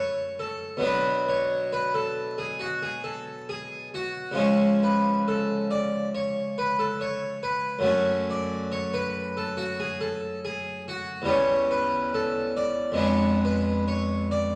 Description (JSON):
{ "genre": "classical, baroque-style suite movement for harpsichord", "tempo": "69 BPM", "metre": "4/4", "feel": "rubato", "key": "F# minor", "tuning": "A4 = 440 Hz", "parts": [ { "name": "harpsichord", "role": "solo", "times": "0.0-14.6 s", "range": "E2 to D5", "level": "-26 LUFS", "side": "equal", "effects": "none" } ], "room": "wet recital hall reverb, RT60 1.7 s", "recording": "vinyl crackle", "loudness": "-27 LUFS", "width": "mono", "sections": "0.0-14.6 A section", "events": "none", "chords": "0.0 F#m; 0.8 Bm; 4.4 C#; 7.9 F#m; 11.3 C#m7b5/E; 13.0 Fdim7" }